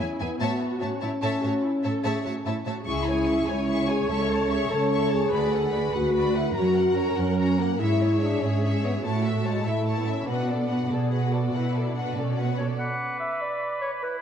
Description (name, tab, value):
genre	cinematic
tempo	97 BPM (dotted quarters)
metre	12/8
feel	straight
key	B dorian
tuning	A4 = 440 Hz
part	warm symphonic violin section	melody	0.0-12.8 s	C#5 to C#6	-34 LUFS	left 4 dB	none
part	warm symphonic violin section	second line	0.0-12.8 s	E4 to E5	-35 LUFS	left 2 dB	none
part	warm symphonic viola section	accompaniment	0.0-12.8 s	B3 to C#5	-34 LUFS	equal	none
part	mellow French horn section	sustained chords	0.0-12.2 s	G#3 to A4	-26 LUFS	left 2 dB	none
part	warm symphonic cello section	bass	0.0-12.7 s	C#2 to B2	-27 LUFS	right 3 dB	none
part	mellow clarinet	second line	12.6-14.2 s	B4 to F#5	-30 LUFS	equal	none
part	clear oboe	second line	12.8-14.2 s	E4 to B4	-33 LUFS	right 1 dB	none
part	mellow hollow silver concert flute	second line	12.8-14.2 s	B5 to D6	-34 LUFS	left 1 dB	none
room	wet scoring stage reverb, RT60 2.1 s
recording	dark, warm production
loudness	-23 LUFS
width	side -8 dB against mid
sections	0.0-12.8 A section; 12.8-14.2 A section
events	none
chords	0.4 A; 2.9 C#m; 4.1 A/C#; 5.3 Bm/D; 6.6 F#; 7.8 C#m/G#; 9.0 A; 10.3 Bm7; 12.8 Bm